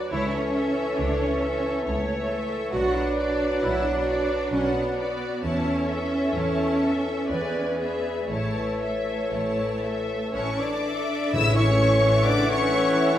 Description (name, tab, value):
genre	classical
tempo	58-70 BPM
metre	3/4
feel	rubato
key	A major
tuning	A4 = 440 Hz
part	clear symphonic violin section	melody	0.0-13.2 s	C#5 to E6	-32 LUFS	left 3 dB	none
part	clear clarinet	second line	0.0-13.2 s	G#4 to C#5	-35 LUFS	left 2 dB	none
part	mellow concert flute	second line	0.0-13.2 s	C#5 to E5	-32 LUFS	equal	none
part	warm symphonic violin section	second line	0.0-13.2 s	A4 to E5	-34 LUFS	left 3 dB	none
part	clear symphonic viola section	accompaniment	0.0-13.2 s	C#3 to C#5	-34 LUFS	right 1 dB	none
part	mellow bassoon	accompaniment	0.0-13.2 s	E3 to F#3	-30 LUFS	equal	none
part	mellow French horn section	sustained chords	0.0-13.2 s	C#4 to D5	-32 LUFS	left 2 dB	none
part	clear symphonic double bass section	bass	0.1-12.1 s	A1 to E2	-30 LUFS	right 1 dB	none
part	rich symphonic cello section	bass	0.1-13.2 s	A3 to F#4	-28 LUFS	right 1 dB	none
part	warm oboe	second line	11.3-13.2 s	C#5 to F#5	-30 LUFS	equal	none
part	warm trombone section	sustained chords	11.3-13.2 s	E3 to E4	-31 LUFS	right 4 dB	none
part	timpani	percussion	11.3-12.7 s	A2	-31 LUFS	equal	none
room	wet recital hall reverb, RT60 1.7 s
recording	heard from further back in the room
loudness	-22 LUFS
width	side -11 dB against mid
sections	0.0-11.3 A section; 11.3-13.2 A section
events	none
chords	0.1 A/C#; 2.7 Bm; 5.4 A/E; 7.3 E7; 8.3 A